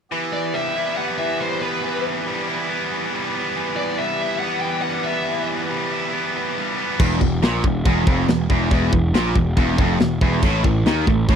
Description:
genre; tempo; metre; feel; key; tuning
heavy metal; 140 BPM; 4/4; straight; E minor; A4 = 441 Hz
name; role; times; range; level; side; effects
pipe organ, clarinet reed; sustained chords; 0.1-7.0 s; E3 to B4; -31 LUFS; equal; none
tight distorted guitar; riff; 0.1-11.4 s; E2 to E4; -23 LUFS; equal; distortion
high-gain lead guitar; melody; 0.3-5.5 s; B4 to G5; -26 LUFS; left 2 dB; distortion, tape echo
distorted electric guitar; riff; 7.0-11.4 s; E2 to D#3; -22 LUFS; right 1 dB; overdrive
fuzz picked electric bass; bass; 7.0-11.4 s; E1 to D#2; -21 LUFS; equal; overdrive
tight metal drum kit; drums; 7.0-11.4 s; china cymbal, crash cymbal, kick drum, snare drum; -20 LUFS; equal; none
room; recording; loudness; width
small room ambience; dry, close 1970s-style studio recording; -18 LUFS; side -8 dB against mid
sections
0.1-7.0 A section; 7.0-11.4 B section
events
none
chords
0.1 Em; 7.0 A#5; 10.4 A5

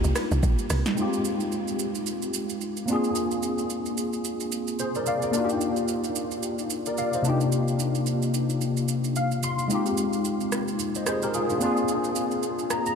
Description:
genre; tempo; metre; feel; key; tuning
amapiano; 110 BPM; 4/4; swing 58% on 16ths; F dorian; A4 = 440 Hz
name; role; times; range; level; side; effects
tine electric piano; accompaniment; 0.0-13.0 s; C3 to C6; -25 LUFS; left 1 dB; ensemble chorus
woody log drum bass; bass; 0.0-0.8 s; Bb1 to C2; -23 LUFS; right 1 dB; none
deep house drum kit; drums; 0.0-13.0 s; hi-hat, kick drum, rim click, shaker, snare drum; -32 LUFS; right 3 dB; overdrive
room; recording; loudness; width
wet huge ambient reverb, RT60 8.4 s; dreamy mix soaked in reverb; -24 LUFS; side -6 dB against mid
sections
1.0-13.0 A section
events
tine electric piano fill 8.9-9.7, 12.4-13.0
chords
0.0 Cm11; 1.0 Fm7; 2.9 Bb9; 5.3 Ebmaj9; 7.2 Cm11; 9.7 Fm7; 11.6 Bb9

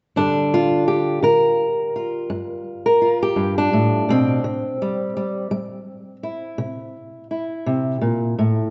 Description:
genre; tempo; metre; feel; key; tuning
acoustic country blues, solo or duo; 56 BPM (dotted quarters); 12/8; straight; unclear; A4 = 440 Hz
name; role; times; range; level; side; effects
fingerpicked old ladder-braced acoustic guitar; solo; 0.2-8.7 s; G2 to Bb4; -21 LUFS; equal; none
room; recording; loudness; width
moderate recital hall reverb, RT60 1.6 s; recorded in a church or concert hall, nothing above 8.0 kHz; -20 LUFS; mono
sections
0.2-8.7 A section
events
none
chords
0.2 G7(no3); 4.5 C

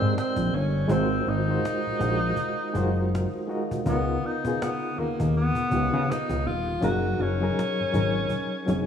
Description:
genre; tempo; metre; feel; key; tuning
R&B, neo-soul; 81 BPM; 4/4; swing 60% on 16ths; unclear; A4 = 441 Hz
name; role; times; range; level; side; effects
breathy tenor saxophone; melody; 0.0-8.9 s; Bb3 to Gb4; -28 LUFS; right 1 dB; slapback echo
barky reed electric piano; accompaniment; 0.0-8.9 s; Cb3 to Eb5; -28 LUFS; left 2 dB; overdrive, fast tremolo
fat analog bass; bass; 0.0-8.9 s; Eb1 to Db3; -26 LUFS; equal; none
cajon; drums; 0.2-8.9 s; none; -34 LUFS; equal; none
room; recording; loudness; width
light reverb, small room ambience; rough home demo mix, vinyl crackle, studio ambience; -23 LUFS; side -8 dB against mid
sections
0.0-8.9 A section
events
none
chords
0.0 Abmaj9; 0.9 Ab13; 3.9 Db13; 6.8 Gb69

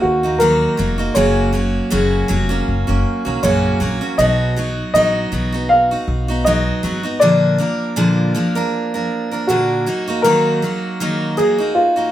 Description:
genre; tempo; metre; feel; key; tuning
acoustic pop; 79 BPM; 4/4; swing 55% on 16ths; Eb minor; A4 = 440 Hz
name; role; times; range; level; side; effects
warm upright piano; melody; 0.0-12.1 s; F4 to F5; -17 LUFS; equal; none
picked steel-string acoustic guitar; accompaniment; 0.0-12.1 s; Gb2 to Bb4; -18 LUFS; right 1 dB; none
upright bass; bass; 0.0-7.1 s; F1 to Eb2; -21 LUFS; left 1 dB; none
room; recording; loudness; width
moderate studio ambience, RT60 0.5 s; band playing live in one room; -14 LUFS; side -12 dB against mid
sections
0.0-12.1 A section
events
none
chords
0.0 Ebm; 1.2 Gb; 4.2 B; 7.2 Bb; 9.9 Ebm

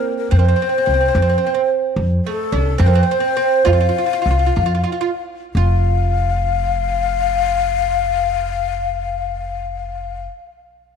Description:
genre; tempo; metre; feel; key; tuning
Persian modal ensemble; 58-73 BPM (dotted quarters); 6/8; straight; F dastgah chahargah; A4 = 441 Hz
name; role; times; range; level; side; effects
oud; melody; 0.0-10.3 s; A3 to F4; -20 LUFS; right 10 dB; none
breathy ney; second line; 0.0-10.2 s; A4 to F5; -20 LUFS; left 11 dB; none
upright bass; bass; 0.3-10.3 s; F1 to F2; -18 LUFS; equal; none
room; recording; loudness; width
light reverb, studio ambience; 1960s-style stereo with parts hard left and right, faint mains hum; -15 LUFS; side -6 dB against mid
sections
0.0-5.6 A section; 5.6-9.7 B section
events
slowing down 2.0-5.6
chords
none

